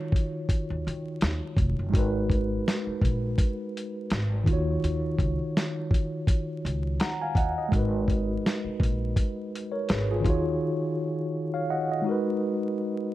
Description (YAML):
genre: lo-fi hip hop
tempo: 83 BPM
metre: 4/4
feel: swing 55% on 16ths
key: G# dorian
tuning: A4 = 441 Hz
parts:
  - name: mellow tine electric piano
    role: accompaniment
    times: 0.0-13.1 s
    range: D#3 to A#5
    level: -28 LUFS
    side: equal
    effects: medium stereo tremolo, low-pass filter
  - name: dusty soul sampler-style drum kit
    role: drums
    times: 0.1-10.4 s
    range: hi-hat, kick drum, snare drum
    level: -25 LUFS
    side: equal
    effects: none
  - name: upright bass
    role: bass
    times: 0.7-10.6 s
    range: E#1 to D#3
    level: -30 LUFS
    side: equal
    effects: none
room: light reverb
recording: dark, warm production, vinyl crackle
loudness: -25 LUFS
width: side -15 dB against mid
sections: 0.0-13.1 A section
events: silent gap 10.6-13.1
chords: 0.0 D#m7; 1.9 G#m7; 4.5 D#m7; 7.7 G#m7; 10.2 D#m7; 12.1 G#m7